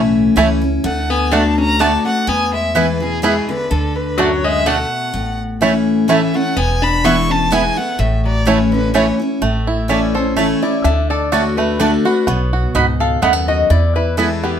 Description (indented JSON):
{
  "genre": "bluegrass",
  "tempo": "126 BPM",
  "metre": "3/4",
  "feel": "swing 54% on 8ths",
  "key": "A major",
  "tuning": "A4 = 440 Hz",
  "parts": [
    { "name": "rich fiddle", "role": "melody", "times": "0.0-9.1 s", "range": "G#4 to C#6", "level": "-20 LUFS", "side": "equal", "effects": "plate reverb" },
    { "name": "lap resonator guitar", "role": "second line", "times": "0.0-14.6 s", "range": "B2 to F#5", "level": "-21 LUFS", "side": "left 5 dB", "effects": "none" },
    { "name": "picked steel-string acoustic guitar", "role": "accompaniment", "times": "0.0-14.6 s", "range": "E2 to F#4", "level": "-18 LUFS", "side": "left 2 dB", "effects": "none" },
    { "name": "upright bass", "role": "bass", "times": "0.0-14.6 s", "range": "E1 to E2", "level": "-20 LUFS", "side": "equal", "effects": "none" },
    { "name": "bluegrass banjo", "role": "arpeggios", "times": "0.4-14.6 s", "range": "A3 to A4", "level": "-20 LUFS", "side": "right 4 dB", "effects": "slapback echo" },
    { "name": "mandolin", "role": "stabs", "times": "0.4-14.3 s", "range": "A3 to B5", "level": "-18 LUFS", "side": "right 6 dB", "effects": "none" }
  ],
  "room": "moderate studio reverb, RT60 0.5 s",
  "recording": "close, detailed microphones",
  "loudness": "-13 LUFS",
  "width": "side -8 dB against mid",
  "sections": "0.0-9.4 A section; 9.4-14.6 B section",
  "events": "resonator guitar played with a steel bar solo 9.4-14.6",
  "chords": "0.0 A; 0.8 D; 2.3 E; 3.7 D; 5.1 A; 6.6 E; 8.0 A; 10.8 D; 12.3 B; 13.7 E",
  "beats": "0.36 | 0.84 1.32 1.80 | 2.27 2.75 3.23 | 3.71 4.18 4.66 | 5.14 5.61 6.09 | 6.57 7.04 7.52 | 7.99 8.47 8.95 | 9.42 9.90 10.37 | 10.85 11.32 11.80 | 12.27 12.75 13.22 | 13.70 14.18"
}